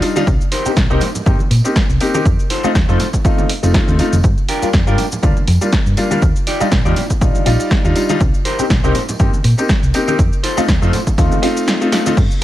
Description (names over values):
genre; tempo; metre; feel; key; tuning
filtered disco house; 121 BPM; 4/4; swing 55% on 16ths; unclear; A4 = 440 Hz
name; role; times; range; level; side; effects
clear grand piano; accompaniment; 0.0-12.2 s; G3 to D5; -18 LUFS; left 1 dB; phaser, sidechain pumping
clean electric guitar; riff; 0.0-12.4 s; D4 to D5; -23 LUFS; equal; sidechain pumping
punchy analog drum machine; drums; 0.0-12.4 s; cabasa, crash cymbal, hi-hat, snare drum; -22 LUFS; equal; sidechain pumping on cymbals, sidechain pumping on perc, sidechain pumping on hats
tambourine and congas; percussion; 0.0-12.4 s; none; -27 LUFS; right 2 dB; sidechain pumping on perc, dub echo
hollow-body short-scale fingered electric bass; bass; 0.3-12.3 s; F1 to Bb2; -16 LUFS; equal; tube saturation, sidechain pumping
electronic kick drum; drums; 0.3-12.3 s; none; -15 LUFS; equal; overdrive
room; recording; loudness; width
little or no reverb; echo-heavy mix; -12 LUFS; side -14 dB against mid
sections
0.0-12.4 A section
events
kick drops out 11.7-12.2; drum fill 11.9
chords
0.3 Cm7; 2.3 F7; 4.2 Gm7; 6.2 Ebmaj9; 8.2 Cm7; 10.2 F7